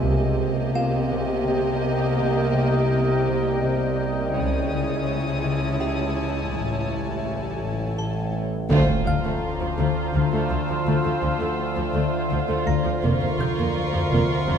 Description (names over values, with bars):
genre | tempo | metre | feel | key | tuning
cinematic, suspense film score | 83 BPM | 3/4 | straight | C phrygian, D minor from 8.7 s | A4 = 440 Hz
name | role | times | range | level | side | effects
dark chamber violin section | melody | 0.0-14.6 s | Bb4 to Eb5 | -35 LUFS | left 3 dB | none
warm chamber viola section | accompaniment | 0.0-14.6 s | F3 to G4 | -28 LUFS | right 1 dB | none
deep dark ambient pad | sustained chords | 0.0-14.6 s | C4 to G5 | -31 LUFS | right 1 dB | chorus, built-in reverb
concert harp | riff | 0.0-14.6 s | F2 to D4 | -28 LUFS | left 9 dB | none
dark chamber cello section | bass | 0.0-14.6 s | D2 to Db3 | -28 LUFS | right 3 dB | none
warm chamber double bass section | bass | 0.0-0.7, 4.4-14.6 s | F1 to D2 | -28 LUFS | right 3 dB | none
overtone-sweeping drone | drone | 0.0-14.6 s | A1 to D2 | -29 LUFS | right 1 dB | chorus, built-in reverb
music box | texture | 0.0-14.6 s | F4 to Bb6 | -34 LUFS | right 1 dB | none
warm chamber violin section | texture | 4.4-14.6 s | Ab5 to E6 | -35 LUFS | left 3 dB | none
warm chamber violin section | second line | 8.7-14.6 s | F4 | -31 LUFS | right 1 dB | none
impact | sound effects | 8.7-10.9 s | none | -30 LUFS | equal | none
room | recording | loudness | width
moderate scoring stage reverb, RT60 1.8 s | close, detailed microphones | -21 LUFS | side -7 dB against mid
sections
0.0-8.7 A section; 8.7-14.6 B section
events
band accent 8.7-9.4; impact 8.7-10.9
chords
0.0 Cm7; 4.4 Dbm; 6.5 A7; 8.7 Dm7; 13.0 Fsus4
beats
| 0.03 0.75 1.47 | 2.19 2.92 3.64 | 4.36 5.08 5.81 | 6.53 7.25 7.98 | 8.70 9.42 10.14 | 10.87 11.59 12.31 | 13.04 13.76 14.48